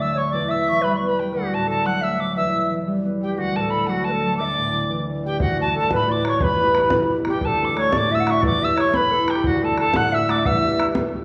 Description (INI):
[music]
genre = celtic folk, Celtic jig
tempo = 119 BPM (dotted quarters)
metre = 6/8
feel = straight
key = D major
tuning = A4 = 440 Hz
[part]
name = mellow tin whistle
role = melody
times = 0.0-10.9 s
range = F#5 to F#6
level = -25 LUFS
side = equal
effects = none
[part]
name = bright wooden flute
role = second line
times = 0.0-10.9 s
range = F#4 to F#5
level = -26 LUFS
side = equal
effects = none
[part]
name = concert harp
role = accompaniment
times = 0.0-11.2 s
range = D2 to G4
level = -26 LUFS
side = equal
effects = none
[part]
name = bodhran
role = percussion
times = 5.4-11.2 s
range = none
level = -28 LUFS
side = equal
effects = none
[sound]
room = wet large studio reverb, RT60 1.2 s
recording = band playing live in one room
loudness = -21 LUFS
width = mono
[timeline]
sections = 0.0-5.4 A section; 5.4-11.2 A section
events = none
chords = 0.3 Em; 1.3 D; 2.4 Em; 3.4 D; 4.4 Dsus2; 5.4 D; 6.4 Em; 7.4 D; 8.4 Em; 9.4 D; 10.4 Em